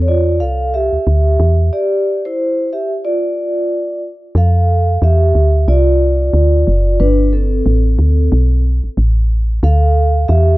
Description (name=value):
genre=hip hop, jazz-hop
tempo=91 BPM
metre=4/4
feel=swing 58% on 16ths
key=unclear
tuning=A4 = 440 Hz
part: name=vibraphone with soft mallets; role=accompaniment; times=0.0-10.6 s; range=C4 to F5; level=-16 LUFS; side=equal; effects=none
part: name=woody FM bass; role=bass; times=0.0-10.6 s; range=F#1 to F2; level=-12 LUFS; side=equal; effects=none
room=small room ambience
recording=dark, warm production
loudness=-12 LUFS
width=side -18 dB against mid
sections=0.0-4.4 A section; 4.4-10.6 B section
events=vibraphone solo 0.0-4.4, 4.4-10.6; break 1.7-4.4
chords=0.0 Dm11; 1.4 Em7; 3.0 N.C.; 4.4 F69; 7.0 Gadd9; 9.6 Dmadd9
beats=0.40 1.06 | 1.72 2.38 3.04 3.70 | 4.36 5.02 5.68 6.34 | 7.00 7.65 8.31 8.97 | 9.63 10.29